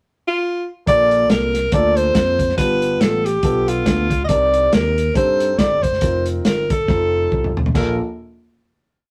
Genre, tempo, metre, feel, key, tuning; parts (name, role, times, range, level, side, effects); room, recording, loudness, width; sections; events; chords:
uptempo gospel; 139 BPM; 4/4; swing 57% on 8ths; Bb major; A4 = 441 Hz
bright alto saxophone; melody; 0.3-8.0 s; F4 to Eb5; -20 LUFS; equal
warm grand piano; accompaniment; 0.9-8.0 s; Bb1 to Bb4; -27 LUFS; equal
modern bright fingered electric bass; bass; 0.9-8.0 s; F1 to G2; -26 LUFS; equal
warm soul drum kit; drums; 0.9-7.9 s; crash cymbal, hi-hat, kick drum, snare drum, toms; -22 LUFS; equal
moderate studio reverb, RT60 0.6 s; rough rehearsal-room recording; -17 LUFS; mono
0.0-0.9 pickup bar; 0.9-7.8 breakdown; 7.8-9.1 final chord
drum fill 6.9-7.8
0.0 N.C.; 0.9 Bbmaj7; 2.6 G7; 4.3 Cm7; 6.0 F7sus4; 6.9 F7; 7.8 Bbmaj7